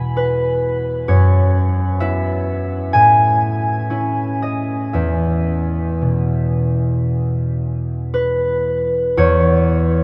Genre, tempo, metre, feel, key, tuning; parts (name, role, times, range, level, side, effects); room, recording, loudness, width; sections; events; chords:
classical, solo harp piece; 56-66 BPM; 4/4; rubato; E major; A4 = 440 Hz
concert harp; solo; 0.0-10.0 s; E2 to B5; -17 LUFS; equal
wet huge ambient reverb, RT60 8.0 s; in a vast, echoing space; -17 LUFS; mono
0.0-9.2 A section
0.0 Eadd9; 1.1 F#9sus4; 2.9 Amaj7; 4.9 E